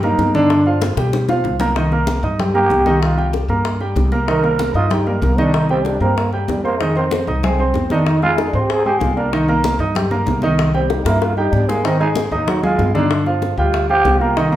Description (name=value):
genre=Afro-Cuban jazz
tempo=190 BPM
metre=4/4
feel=straight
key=C minor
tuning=A4 = 441 Hz
part: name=growling trombone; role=second line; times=0.0-14.4 s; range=D3 to Bb4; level=-20 LUFS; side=right 2 dB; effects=none
part: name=warm concert grand piano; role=accompaniment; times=0.0-14.6 s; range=D3 to Eb6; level=-18 LUFS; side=right 1 dB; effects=none
part: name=upright bass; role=bass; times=0.0-14.6 s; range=C2 to B2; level=-20 LUFS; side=equal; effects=none
part: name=bongos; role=percussion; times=0.0-14.6 s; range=none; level=-26 LUFS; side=left 6 dB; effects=none
part: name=congas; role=percussion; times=0.0-14.6 s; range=none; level=-25 LUFS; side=equal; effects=none
room=wet large studio reverb, RT60 1.1 s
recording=heard from further back in the room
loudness=-14 LUFS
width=side -13 dB against mid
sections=0.0-1.8 A section; 1.8-14.6 A section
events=trombone solo 0.0-14.6; drum fill 0.8-1.8, 11.1-11.8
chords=0.0 Cm7 (rootless); 0.5 G7#9; 1.8 Cm7; 6.8 Fm7; 9.3 Cm7; 11.8 Ab5; 13.1 Gm7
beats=0.19 | 0.51 0.82 1.13 1.45 | 1.76 2.08 2.39 2.71 | 3.02 3.34 3.65 3.97 | 4.28 4.60 4.91 5.23 | 5.54 5.86 6.17 6.49 | 6.80 7.12 7.44 7.75 | 8.07 8.38 8.70 9.01 | 9.33 9.64 9.96 10.27 | 10.59 10.90 11.21 11.53 | 11.85 12.16 12.48 12.79 | 13.11 13.42 13.74 14.05 | 14.37